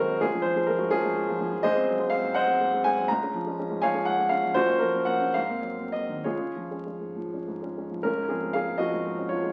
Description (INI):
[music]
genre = classical, romantic character piece for solo piano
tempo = 65-86 BPM (dotted quarters)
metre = 6/8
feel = rubato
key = Db major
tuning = A4 = 438 Hz
[part]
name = warm concert grand piano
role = solo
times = 0.0-9.5 s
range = Gb1 to Bb5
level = -26 LUFS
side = equal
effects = none
[sound]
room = wet large studio reverb, RT60 1.0 s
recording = very old 78 rpm record, vinyl crackle, faint mains hum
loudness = -27 LUFS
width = mono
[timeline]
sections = 0.0-8.0 A section; 8.0-9.5 B section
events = none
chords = 0.2 Db; 1.6 Ab7/Db; 3.1 Db; 4.6 Gbmaj7; 5.4 Ab9; 6.2 Db